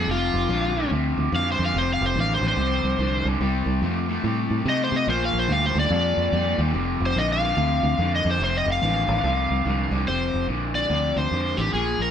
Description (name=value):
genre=electric blues shuffle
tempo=144 BPM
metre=4/4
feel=swing 63% on 8ths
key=F mixolydian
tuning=A4 = 440 Hz
part: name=overdriven slide guitar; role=melody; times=0.0-12.1 s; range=F4 to F5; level=-24 LUFS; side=left 2 dB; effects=none
part: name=raw garage guitar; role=riff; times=0.0-12.1 s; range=F2 to A3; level=-26 LUFS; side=left 1 dB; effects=overdrive
part: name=fingered electric bass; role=bass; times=0.0-12.1 s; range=F1 to C3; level=-25 LUFS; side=right 1 dB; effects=none
room=light reverb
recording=band playing live in one room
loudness=-20 LUFS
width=side -8 dB against mid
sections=0.0-10.1 A section; 10.1-12.1 B section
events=electric slide guitar solo 0.0-10.1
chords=0.1 F5; 3.4 C5; 5.1 Bb; 6.7 F5